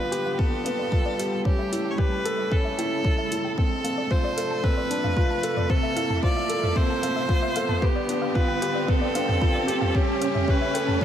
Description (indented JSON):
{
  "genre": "piano and strings electronica",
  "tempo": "113 BPM",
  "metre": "4/4",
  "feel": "straight",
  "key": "unclear",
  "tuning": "A4 = 442 Hz",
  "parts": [
    { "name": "bright viola", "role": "melody", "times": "0.0-11.0 s", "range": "G4 to D5", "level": "-28 LUFS", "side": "equal", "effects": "digital delay" },
    { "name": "clear symphonic string section", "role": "sustained chords", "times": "0.0-11.0 s", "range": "C3 to E5", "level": "-34 LUFS", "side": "equal", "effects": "low-pass filter" },
    { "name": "soft round pluck", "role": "arpeggios", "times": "0.0-11.0 s", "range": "B4 to A5", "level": "-36 LUFS", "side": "left 3 dB", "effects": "chorus, sidechain pumping, digital delay" },
    { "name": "felt-muted upright piano", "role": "riff", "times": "0.0-11.0 s", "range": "B3 to A4", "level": "-28 LUFS", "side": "left 1 dB", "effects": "digital delay" },
    { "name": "riser", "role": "sound effects", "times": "0.2-11.0 s", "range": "none", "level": "-32 LUFS", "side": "right 2 dB", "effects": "none" },
    { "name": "deep house drum kit", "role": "drums", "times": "0.1-11.0 s", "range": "hi-hat, toms", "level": "-30 LUFS", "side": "right 1 dB", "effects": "none" },
    { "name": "electronic kick drum", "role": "drums", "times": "0.4-11.0 s", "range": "none", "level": "-23 LUFS", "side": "equal", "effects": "none" }
  ],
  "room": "light reverb, studio reverb",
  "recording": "none",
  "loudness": "-22 LUFS",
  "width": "side -10 dB against mid",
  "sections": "0.0-11.0 A section",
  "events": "build-up 0.0-11.0; filter sweep on synth arpeggio sound 0.0-11.0; riser 0.2-11.0",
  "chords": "0.0 G7; 1.5 A7; 3.6 Dm7; 5.7 Fmaj7; 7.8 G7; 9.9 A7"
}